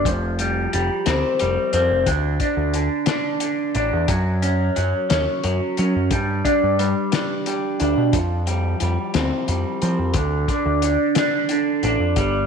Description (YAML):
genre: psychedelic rock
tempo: 59 BPM (dotted quarters)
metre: 6/8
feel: straight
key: unclear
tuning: A4 = 439 Hz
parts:
  - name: electric guitar through a small old amp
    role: riff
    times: 0.0-12.5 s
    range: D3 to D4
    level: -20 LUFS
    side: right 1 dB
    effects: phaser
  - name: growling picked electric bass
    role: bass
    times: 0.0-12.5 s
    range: F1 to F#3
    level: -22 LUFS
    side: equal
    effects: overdrive
  - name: cloth-damped thuddy drum kit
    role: drums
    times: 0.1-12.3 s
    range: hi-hat, kick drum, snare drum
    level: -25 LUFS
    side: left 4 dB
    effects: none
room: moderate echo chamber reverb, RT60 2.2 s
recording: 1960s-style stereo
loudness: -18 LUFS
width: side -6 dB against mid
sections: 0.0-12.5 A section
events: none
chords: 0.1 Fsus2; 2.1 D5; 4.1 F#5; 6.1 G5; 8.1 Fsus2; 10.2 N.C.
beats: | 0.06 1.07 | 2.08 3.09 | 4.09 5.10 | 6.11 7.12 | 8.13 9.14 | 10.15 11.16 | 12.17